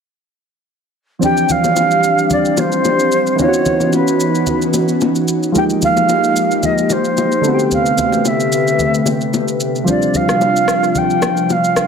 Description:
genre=amapiano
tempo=111 BPM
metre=4/4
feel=swing 55% on 16ths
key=D dorian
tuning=A4 = 440 Hz
part: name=mellow jazz flute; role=melody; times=1.2-11.9 s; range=B4 to G5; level=-16 LUFS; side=right 1 dB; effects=analog delay
part: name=soft electric-piano-like synth keys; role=accompaniment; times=1.2-11.9 s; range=D3 to G4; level=-18 LUFS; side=equal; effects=chorus, analog delay
part: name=airy breathy pad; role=sustained chords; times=1.2-11.9 s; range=C3 to B4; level=-19 LUFS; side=left 1 dB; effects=chorus
part: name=electronic shaker and rim click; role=drums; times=1.2-11.9 s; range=none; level=-22 LUFS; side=equal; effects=analog delay
part: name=congas and bongos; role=percussion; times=1.2-11.6 s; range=none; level=-23 LUFS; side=left 3 dB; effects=none
room=light reverb, small room ambience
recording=echo-heavy mix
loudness=-12 LUFS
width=side -6 dB against mid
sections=1.2-11.9 A section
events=none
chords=1.2 Dm11; 3.4 C#m11; 5.5 Fm11; 7.4 Am11; 9.9 Dm7

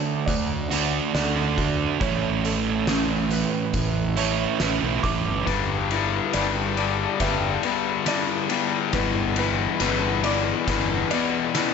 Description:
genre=post-rock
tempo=69 BPM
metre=4/4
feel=straight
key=unclear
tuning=A4 = 440 Hz
part: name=electric guitar through a small old amp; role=arpeggios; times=0.0-11.7 s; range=D3 to D5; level=-31 LUFS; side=left 3 dB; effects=lush chorus, analog delay
part: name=felt-muted upright piano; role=arpeggios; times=0.0-11.7 s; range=A4 to D6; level=-34 LUFS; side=right 4 dB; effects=analog delay
part: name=sludgy distorted guitar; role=riff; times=0.0-5.5 s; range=A2 to F#4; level=-25 LUFS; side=right 10 dB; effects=overdrive
part: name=fuzz fingered electric bass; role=bass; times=0.3-11.0 s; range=G1 to D2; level=-28 LUFS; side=equal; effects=overdrive
part: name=oversized low-tuned drum kit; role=drums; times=0.3-11.7 s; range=hi-hat, kick drum, ride cymbal, snare drum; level=-28 LUFS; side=equal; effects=none
part: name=cranked stack guitar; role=riff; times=5.5-11.7 s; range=E2 to G3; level=-24 LUFS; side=left 12 dB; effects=overdrive
room=light reverb, studio reverb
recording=nothing above 7.8 kHz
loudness=-21 LUFS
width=side -6 dB against mid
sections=0.0-5.5 A section; 5.5-11.7 B section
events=build-up 5.5-11.7; drum fill 5.5-11.7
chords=0.0 D; 2.0 Aadd9; 5.5 G6

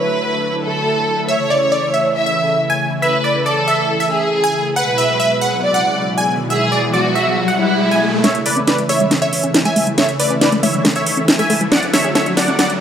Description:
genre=uplifting trance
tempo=138 BPM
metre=4/4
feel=straight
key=A major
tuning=A4 = 440 Hz
part: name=rich studio violin section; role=second line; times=0.0-8.2 s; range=E4 to E5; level=-18 LUFS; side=right 1 dB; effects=digital delay
part: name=analog string pad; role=sustained chords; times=0.0-12.8 s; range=B2 to E4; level=-22 LUFS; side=equal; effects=ensemble chorus
part: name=supersaw stab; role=melody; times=1.3-12.7 s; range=B4 to G#5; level=-18 LUFS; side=equal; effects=phaser, tape echo
part: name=riser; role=sound effects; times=5.7-12.8 s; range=none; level=-23 LUFS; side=left 2 dB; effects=none
part: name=tight sequenced synth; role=arpeggios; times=8.2-12.6 s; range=G#3 to A4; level=-21 LUFS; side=equal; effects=chorus, tape echo
part: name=house drum kit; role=drums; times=8.2-12.8 s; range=hi-hat, snare drum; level=-16 LUFS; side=equal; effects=low-pass filter on snare, low-pass filter on hats, low-pass filter on room
room=moderate lush hall reverb, RT60 1.9 s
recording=high-pass filter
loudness=-13 LUFS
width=side -8 dB against mid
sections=0.0-8.2 A section; 8.2-12.8 B section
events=riser 5.7-8.2, 8.2-12.8; build-up 8.2-12.8; drum fill 8.2-12.8; filter sweep on synth arpeggio sound 8.2-12.8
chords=0.0 Dadd9; 1.3 A; 4.8 Eadd9; 8.2 A; 11.7 Dadd9

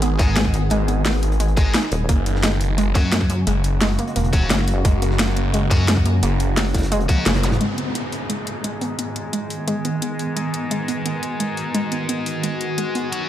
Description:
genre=dark technical drum and bass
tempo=174 BPM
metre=4/4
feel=straight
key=G# minor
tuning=A4 = 441 Hz
part: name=swarming drone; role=sustained chords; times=0.0-13.3 s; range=C#3 to G#4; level=-27 LUFS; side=right 1 dB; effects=built-in reverb, sidechain pumping
part: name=warbly dusty pluck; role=arpeggios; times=0.0-13.1 s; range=G#3 to D#4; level=-26 LUFS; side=right 1 dB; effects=chorus, sidechain pumping, dub echo
part: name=phased detuned saw bass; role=bass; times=0.0-7.6 s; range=E1 to G#1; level=-20 LUFS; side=equal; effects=phaser, tube saturation
part: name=crunchy breakbeat drum kit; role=drums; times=0.0-7.6 s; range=hi-hat, snare drum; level=-33 LUFS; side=equal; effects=none
part: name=drum and bass drum kit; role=drums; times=0.0-13.2 s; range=hi-hat, snare drum, toms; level=-24 LUFS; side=equal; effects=overdrive, studio reverb
part: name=scooped high-gain guitar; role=stabs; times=0.2-13.3 s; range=F#3 to G#4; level=-29 LUFS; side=left 2 dB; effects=distortion, low-pass filter, dub echo
part: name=pulsing pluck wobble bass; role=bass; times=0.2-6.2 s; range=D#1 to F#2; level=-19 LUFS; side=equal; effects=chorus
part: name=electronic kick drum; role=drums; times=0.2-7.2 s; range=none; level=-18 LUFS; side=equal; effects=overdrive, studio reverb
part: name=zap and downlifter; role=sound effects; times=7.4-10.4 s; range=none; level=-30 LUFS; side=left 1 dB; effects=none
room=light reverb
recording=none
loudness=-18 LUFS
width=side -12 dB against mid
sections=0.0-7.6 A section; 7.6-13.3 B section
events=drum fill 7.1-7.6; band accent 7.3; filter sweep on synth drone 7.6-13.3; filter sweep on synth arpeggio sound 7.6-13.3; filter sweep on distorted electric guitar 7.6-13.3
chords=0.0 G#m; 2.1 F#; 7.6 G#m

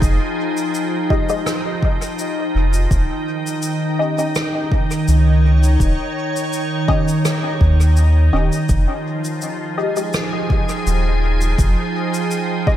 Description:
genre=ambient dub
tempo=83 BPM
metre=4/4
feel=swing 53% on 16ths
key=F minor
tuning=A4 = 440 Hz
part: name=soft additive organ-like pad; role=sustained chords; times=0.0-12.8 s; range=Eb3 to G5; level=-20 LUFS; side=equal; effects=ensemble chorus, built-in reverb
part: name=soft dub sub bass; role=bass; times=0.0-11.8 s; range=Eb1 to Eb2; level=-14 LUFS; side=equal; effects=none
part: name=cabasa and rim click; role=drums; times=0.0-12.5 s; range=none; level=-28 LUFS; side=equal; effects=dub echo
part: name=electronic kick drum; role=drums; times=0.0-12.8 s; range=none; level=-18 LUFS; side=equal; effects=none
part: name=filtered dub chord stab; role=stabs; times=1.1-12.8 s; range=Ab3 to Eb5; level=-26 LUFS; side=left 2 dB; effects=phaser, ensemble chorus, dub echo
room=light reverb, small room ambience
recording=none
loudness=-16 LUFS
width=side -12 dB against mid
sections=0.0-12.8 A section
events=none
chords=0.0 Fm9; 2.9 Eb7; 8.7 Fm9

